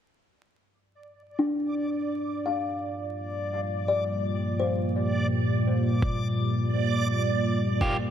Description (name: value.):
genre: ambient dub.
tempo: 84 BPM.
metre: 4/4.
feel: straight.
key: G minor.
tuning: A4 = 440 Hz.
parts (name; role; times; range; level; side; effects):
deep dark ambient pad; sustained chords; 2.9-8.1 s; G3 to A5; -26 LUFS; equal; chorus, built-in reverb.
backwards swelling texture; texture; 1.1-8.1 s; D5; -33 LUFS; right 3 dB; built-in reverb.
kalimba; arpeggios; 1.4-6.2 s; D4 to F5; -30 LUFS; left 2 dB; low-pass filter, dub echo.
electronic kick drum; drums; 6.0-8.0 s; none; -27 LUFS; equal; overdrive.
electric guitar at the edge of break-up; stabs; 7.8-8.0 s; Bb3 to G4; -27 LUFS; right 1 dB; none.
room: light reverb.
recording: echo-heavy mix, vinyl crackle.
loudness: -25 LUFS.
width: side -9 dB against mid.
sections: 0.3-8.1 A section.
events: filter sweep on ambient pad 0.3-8.1; filter sweep on kalimba 0.3-8.1.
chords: 0.3 Gm7.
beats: | 0.32 1.03 1.74 2.46 | 3.17 3.89 4.60 5.32 | 6.03 6.74 7.46.